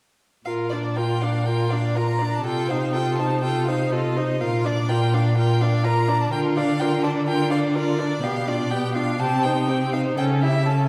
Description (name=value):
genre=quick classical-period movement for string quartet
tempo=123 BPM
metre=4/4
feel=rubato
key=Bb major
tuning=A4 = 440 Hz
part: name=clear violin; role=melody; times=0.5-10.9 s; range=D5 to Bb5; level=-30 LUFS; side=equal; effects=none
part: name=rich violin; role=second line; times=0.5-10.9 s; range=F4 to D5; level=-32 LUFS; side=equal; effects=none
part: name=clear viola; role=accompaniment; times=0.5-10.9 s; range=B3 to F4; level=-28 LUFS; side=equal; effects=none
part: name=clear cello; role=bass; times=0.5-10.9 s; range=Bb2 to D3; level=-25 LUFS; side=equal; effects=none
room=wet recital hall reverb, RT60 1.4 s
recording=heard from further back in the room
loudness=-22 LUFS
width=mono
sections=0.5-10.9 A section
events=none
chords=0.5 Bb; 2.5 F7/C; 4.4 Bb; 6.3 Bb/D; 8.2 G7/B; 9.2 Cm; 10.2 A7/C#